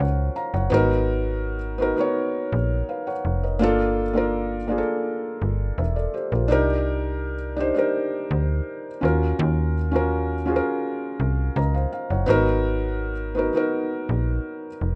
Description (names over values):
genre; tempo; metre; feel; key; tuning
contemporary R&B; 83 BPM; 4/4; straight; unclear; A4 = 443 Hz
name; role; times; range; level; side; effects
felt-muted upright piano; accompaniment; 0.0-15.0 s; Bb3 to Bb5; -26 LUFS; equal; none
slap-like FM bass; bass; 0.0-15.0 s; E1 to Eb2; -26 LUFS; equal; none
room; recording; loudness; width
light reverb; rough home demo mix, nothing above 10.5 kHz; -24 LUFS; mono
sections
0.0-15.0 A section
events
felt piano fill 11.2-12.3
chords
0.0 Ebm9 (rootless); 0.7 Abm9; 3.6 Gm9; 6.5 Cm9; 9.0 Ebm9; 12.3 Abm9